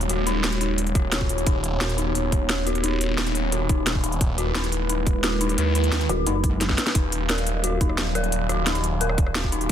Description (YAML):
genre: dark technical drum and bass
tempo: 175 BPM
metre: 4/4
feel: straight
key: Eb minor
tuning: A4 = 437 Hz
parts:
  - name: dark analog pad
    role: sustained chords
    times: 0.0-9.7 s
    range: Gb3 to F5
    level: -29 LUFS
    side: equal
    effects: chorus, sidechain pumping
  - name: phased detuned saw bass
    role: bass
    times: 0.0-9.7 s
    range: Eb1 to Eb2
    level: -25 LUFS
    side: equal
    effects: phaser, tube saturation
  - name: drum and bass drum kit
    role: drums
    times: 0.0-9.7 s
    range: hi-hat, rim click, snare drum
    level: -26 LUFS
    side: equal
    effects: none
  - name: dark detuned synth bell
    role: arpeggios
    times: 0.1-9.6 s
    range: Eb4 to B4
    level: -29 LUFS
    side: left 3 dB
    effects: chorus, phaser, sidechain pumping, digital delay
  - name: electronic kick drum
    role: drums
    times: 1.0-9.7 s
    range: none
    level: -23 LUFS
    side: equal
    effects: none
  - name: pulsing pluck wobble bass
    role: bass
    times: 6.1-6.8 s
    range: Eb1 to Gb1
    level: -25 LUFS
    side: equal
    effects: chorus
room: light reverb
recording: dense, heavily limited modern master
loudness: -20 LUFS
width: side -10 dB against mid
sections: 0.0-9.7 A section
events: drum fill 6.6-7.0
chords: 0.0 Dbsus4/Eb; 1.5 Badd9/D#; 4.2 E/Eb; 7.0 Ebmadd9